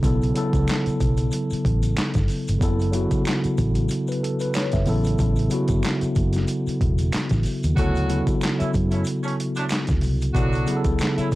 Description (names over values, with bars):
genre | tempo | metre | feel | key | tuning
R&B, neo-soul | 93 BPM | 4/4 | swing 56% on 16ths | B minor | A4 = 440 Hz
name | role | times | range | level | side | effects
mellow tine electric piano | accompaniment | 0.0-11.4 s | C#3 to E5 | -23 LUFS | equal | medium stereo tremolo
vintage muted fingered electric bass | bass | 0.0-11.4 s | E1 to F#2 | -23 LUFS | equal | tube saturation
boom bap sampler-style drum kit | drums | 0.0-11.4 s | handclaps, hi-hat, kick drum, snare drum | -25 LUFS | equal | overdrive
maracas and finger snaps | percussion | 0.0-11.4 s | none | -40 LUFS | equal | none
mellow horn section | stabs | 7.8-11.3 s | F#3 to F#4 | -29 LUFS | right 2 dB | none
room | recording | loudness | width
light reverb | blown-out, overdriven recording, vinyl crackle, overdrive | -20 LUFS | side -18 dB against mid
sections
0.0-11.4 A section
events
none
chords
0.0 Bsus2; 2.6 F#m7; 4.9 A69; 7.8 Dmaj9; 10.3 Bm9